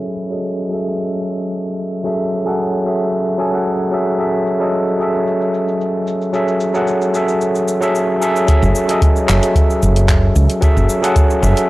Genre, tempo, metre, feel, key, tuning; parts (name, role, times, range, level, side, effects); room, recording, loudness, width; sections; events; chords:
sunset chillout; 112 BPM; 4/4; straight; F# dorian; A4 = 441 Hz
overdriven tine electric piano; accompaniment; 0.0-11.7 s; F#3 to G#5; -16 LUFS; equal; auto-pan, tape echo
deep house drum kit; drums; 0.1-11.7 s; cabasa, handclaps, hi-hat; -24 LUFS; equal; overdrive
electronic kick drum; drums; 8.5-11.3 s; -13 LUFS; equal
woody fretless electric bass; bass; 8.6-11.5 s; F#1 to C#2; -13 LUFS; equal
digital ambience; dry, gritty hardware recording, cassette tape, low-pass filter; -14 LUFS; side -18 dB against mid
0.0-8.5 A section; 8.5-11.7 B section
filter sweep 0.0-8.5
0.0 F#m9